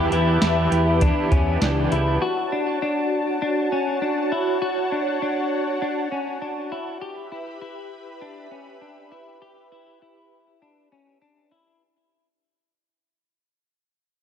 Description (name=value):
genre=dream pop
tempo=100 BPM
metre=4/4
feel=straight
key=E dorian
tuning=A4 = 442 Hz
part: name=electric guitar at the edge of break-up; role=accompaniment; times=0.0-2.2 s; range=E3 to G4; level=-26 LUFS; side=right 4 dB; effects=tremolo, ensemble chorus
part: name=lush unison pad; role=sustained chords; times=0.0-11.8 s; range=F#4 to B5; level=-26 LUFS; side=right 1 dB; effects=chorus, phaser
part: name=clean electric guitar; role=arpeggios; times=0.0-11.8 s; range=C#4 to G4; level=-26 LUFS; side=left 3 dB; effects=analog chorus, digital delay
part: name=fat analog bass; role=bass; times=0.0-2.2 s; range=C#2 to E2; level=-22 LUFS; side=equal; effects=none
part: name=soft vintage rhythm box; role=drums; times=0.1-2.1 s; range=hi-hat, kick drum, snare drum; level=-22 LUFS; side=equal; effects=none
room=moderate plate reverb, RT60 2.7 s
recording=none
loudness=-20 LUFS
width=side -8 dB against mid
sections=0.0-11.8 A section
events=fade-out 0.0-11.8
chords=0.0 Em; 2.2 Dmaj7; 7.0 Em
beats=0.41 1.01 1.61 | 2.21 2.81 3.41 4.01 | 4.61 5.21 5.81 6.41 | 7.01 7.61 8.21 8.81 | 9.41 10.01 10.61 11.21